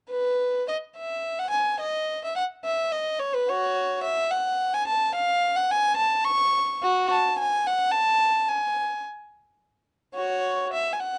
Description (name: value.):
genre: classical, baroque-style suite movement for unaccompanied violin.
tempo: 72 BPM (dotted quarters).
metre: 6/8.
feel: rubato.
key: E major.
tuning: A4 = 441 Hz.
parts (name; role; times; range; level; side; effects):
warm violin; solo; 0.1-11.2 s; F#4 to C#6; -25 LUFS; equal; none.
room: light reverb.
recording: dark, warm production, nothing above 10.8 kHz.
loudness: -25 LUFS.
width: mono.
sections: 0.1-11.2 A section.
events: none.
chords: none.